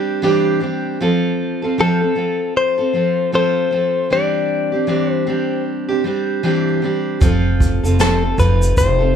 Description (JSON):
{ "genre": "acoustic pop", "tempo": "77 BPM", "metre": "4/4", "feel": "swing 60% on 16ths", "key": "unclear", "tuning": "A4 = 440 Hz", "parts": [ { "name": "fingerpicked steel-string acoustic guitar", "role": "accompaniment", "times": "0.0-9.2 s", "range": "E3 to A4", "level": "-18 LUFS", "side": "right 2 dB", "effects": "none" }, { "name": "direct-recorded clean electric guitar", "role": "melody", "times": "1.8-9.2 s", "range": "A4 to D5", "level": "-18 LUFS", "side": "left 5 dB", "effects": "none" }, { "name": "upright bass", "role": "bass", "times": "7.2-9.2 s", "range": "F1", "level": "-16 LUFS", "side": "right 1 dB", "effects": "none" }, { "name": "jazz brush drum kit", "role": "drums", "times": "7.2-9.0 s", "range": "kick drum, shaker, snare drum", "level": "-18 LUFS", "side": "right 1 dB", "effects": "none" } ], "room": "light reverb", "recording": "band playing live in one room", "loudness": "-15 LUFS", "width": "side -8 dB against mid", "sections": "0.0-9.2 A section", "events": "none", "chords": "0.0 Cadd9/E; 1.0 F; 4.1 Cadd9/E; 7.2 F", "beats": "0.22 | 1.00 1.78 2.56 3.33 | 4.11 4.89 5.67 6.44 | 7.22 8.00 8.77" }